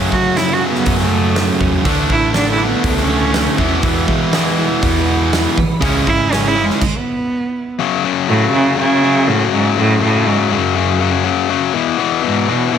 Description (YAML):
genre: quiet-loud alternative rock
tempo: 121 BPM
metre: 4/4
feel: straight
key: F# minor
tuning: A4 = 438 Hz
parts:
  - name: twelve-string electric guitar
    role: arpeggios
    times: 0.0-6.8 s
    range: E2 to C#4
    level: -27 LUFS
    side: right 4 dB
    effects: none
  - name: distorted electric guitar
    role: riff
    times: 0.0-12.8 s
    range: E2 to D4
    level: -17 LUFS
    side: left 11 dB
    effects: overdrive
  - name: thick fuzz guitar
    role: riff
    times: 0.0-6.8 s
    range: F#2 to E4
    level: -19 LUFS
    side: right 10 dB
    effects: distortion
  - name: hollow-body short-scale picked electric bass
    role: bass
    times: 0.0-6.7 s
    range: G#1 to F#3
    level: -20 LUFS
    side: equal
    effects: none
  - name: clear cello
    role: melody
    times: 0.1-12.8 s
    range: F#2 to F#4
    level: -17 LUFS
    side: right 3 dB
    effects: plate reverb
  - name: huge arena drum kit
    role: drums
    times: 0.1-6.9 s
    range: crash cymbal, hi-hat, kick drum, snare drum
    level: -20 LUFS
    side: right 1 dB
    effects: none
room: light reverb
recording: none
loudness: -13 LUFS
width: side -8 dB against mid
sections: 0.0-7.8 A section; 7.8-12.8 B section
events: cello solo 0.0-7.8; stop 6.8-7.8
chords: 0.0 F#m; 1.9 Dsus2; 3.6 E; 5.8 C#m; 6.8 N.C.; 7.8 F#5; 11.7 E